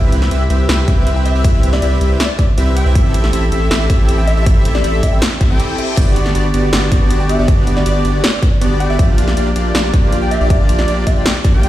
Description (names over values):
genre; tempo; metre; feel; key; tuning
future bass; 159 BPM; 4/4; half-time; G major; A4 = 440 Hz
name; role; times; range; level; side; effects
airy dreamy lead; arpeggios; 0.0-11.7 s; D5 to G5; -26 LUFS; left 1 dB; chorus, sidechain pumping, tape echo
big bright polysynth; riff; 0.0-11.7 s; Bb3 to G5; -19 LUFS; equal; chorus, sidechain pumping
saturated sub bass; bass; 0.0-11.7 s; G1 to C2; -16 LUFS; equal; sidechain pumping
big-room dance drum kit; drums; 0.1-11.7 s; crash cymbal, hi-hat, snare drum; -20 LUFS; equal; none
electronic kick drum; drums; 0.9-11.5 s; none; -13 LUFS; equal; none
glassy wavetable pluck; melody; 1.2-11.3 s; D5 to G5; -25 LUFS; equal; chorus, sidechain pumping, ping-pong delay
reverse cymbal; sound effects; 5.4-6.0 s; none; -29 LUFS; left 6 dB; none
room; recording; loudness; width
little or no reverb; played on a big sound system in a bare room, stone room reverb; -11 LUFS; side -14 dB against mid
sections
0.0-11.7 A section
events
reverse cymbal 5.4-6.0; break 5.6-6.0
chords
0.0 Cmaj7; 3.0 Am7; 6.0 Gmaj7; 9.0 Bb6